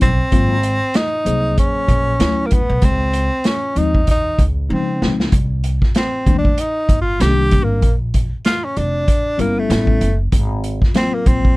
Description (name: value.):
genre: hip hop, jazz-hop.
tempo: 96 BPM.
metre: 4/4.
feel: swing 58% on 16ths.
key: C phrygian.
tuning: A4 = 440 Hz.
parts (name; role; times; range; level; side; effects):
breathy tenor saxophone; melody; 0.0-11.6 s; A3 to G4; -20 LUFS; equal; none.
mellow tine electric piano; accompaniment; 0.0-11.6 s; Eb3 to C5; -21 LUFS; left 3 dB; medium stereo tremolo.
upright bass; bass; 0.0-11.5 s; F1 to Db3; -19 LUFS; equal; none.
vintage drum kit; drums; 0.0-11.6 s; hi-hat, kick drum, snare drum; -17 LUFS; equal; none.
room: little or no reverb.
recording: dark, warm production.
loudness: -14 LUFS.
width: side -21 dB against mid.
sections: 0.0-5.3 A section; 5.3-11.6 B section.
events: drum fill 4.7-5.3; tenor saxophone solo 5.3-11.6.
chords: 0.3 Ab13; 2.2 Dmaj9; 2.8 Dbmaj9; 5.3 Cm9; 7.8 Bb6; 9.7 A9; 10.3 Ab13.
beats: | 0.32 0.95 1.57 2.20 | 2.82 3.45 4.07 4.70 | 5.32 5.95 6.57 7.20 | 7.82 8.45 9.07 9.70 | 10.32 10.95.